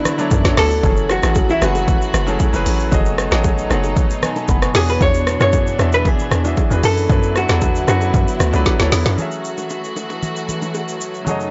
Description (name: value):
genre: amapiano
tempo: 115 BPM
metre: 4/4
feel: straight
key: F# minor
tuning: A4 = 442 Hz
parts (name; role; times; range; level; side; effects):
- vintage hollow-body jazz guitar; melody; 0.0-8.9 s; D4 to C#5; -22 LUFS; equal; analog delay
- clear concert grand piano; accompaniment; 0.0-11.5 s; E3 to C#6; -26 LUFS; equal; none
- rich studio string section; sustained chords; 0.0-11.5 s; F#2 to F#4; -28 LUFS; equal; none
- deep house drum kit; drums; 0.1-11.5 s; hi-hat, kick drum, rim click, shaker, snare drum; -21 LUFS; equal; none
- bongos and congas; percussion; 0.1-11.4 s; none; -29 LUFS; equal; none
- hollow log drum bass; bass; 0.3-9.2 s; F#1 to F#2; -21 LUFS; equal; none
room: little or no reverb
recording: dry, gritty hardware recording, transformer saturation, nothing above 7.7 kHz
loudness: -17 LUFS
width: mono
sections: 0.0-9.2 A section; 9.2-11.5 B section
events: drop 0.0-9.2; drum fill 8.7-9.2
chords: 0.0 D69; 0.8 F#m9; 2.9 B13/F#; 4.7 E13; 7.1 D69; 9.2 F#m9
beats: 0.31 | 0.83 1.36 1.88 2.40 | 2.92 3.44 3.96 4.49 | 5.01 5.53 6.05 6.57 | 7.09 7.62 8.14 8.66 | 9.18 9.70 10.23 10.75 | 11.27